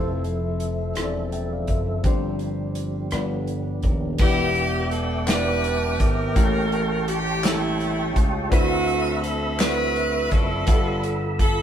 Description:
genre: slow gospel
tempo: 56 BPM (dotted quarters)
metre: 6/8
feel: straight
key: unclear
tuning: A4 = 435 Hz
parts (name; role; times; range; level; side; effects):
- warm baby grand piano; accompaniment; 0.0-11.6 s; G2 to G5; -30 LUFS; left 3 dB; none
- percussive tonewheel organ; sustained chords; 0.0-11.6 s; F3 to E6; -28 LUFS; right 1 dB; slow rotary speaker, chorus vibrato
- slap bass; bass; 0.0-11.6 s; Eb1 to D2; -27 LUFS; equal; none
- natural country drum kit; drums; 0.2-11.6 s; crash cymbal, hi-hat, kick drum, rim click, snare drum; -23 LUFS; equal; none
- clear saxophone section; melody; 4.2-11.6 s; G3 to B4; -25 LUFS; right 2 dB; none
- group handclap; percussion; 5.3-9.9 s; none; -33 LUFS; left 3 dB; none
room: light reverb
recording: band playing live in one room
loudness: -20 LUFS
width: side -9 dB against mid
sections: 0.0-4.2 A section; 4.2-11.6 B section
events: none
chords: 0.0 Fmaj7; 2.0 G7sus4; 3.1 G7; 4.2 Em7; 6.4 A7b9; 8.5 D13; 10.7 G13

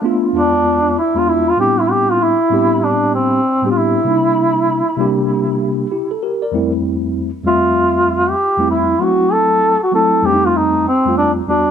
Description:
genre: hip hop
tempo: 97 BPM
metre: 4/4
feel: swing 64% on 16ths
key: unclear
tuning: A4 = 439 Hz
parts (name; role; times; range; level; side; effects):
- mellow tine electric piano; accompaniment; 0.0-11.7 s; E2 to E5; -17 LUFS; equal; medium stereo tremolo
- mellow duduk; melody; 0.4-11.7 s; C4 to A4; -14 LUFS; equal; analog delay
room: light reverb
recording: none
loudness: -13 LUFS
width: side -8 dB against mid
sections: 0.0-11.5 A section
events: duduk solo 0.0-11.5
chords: 0.3 E7b9; 1.6 Am11; 4.1 C9; 6.5 Fmaj9; 9.0 F#m7b5; 10.2 F9

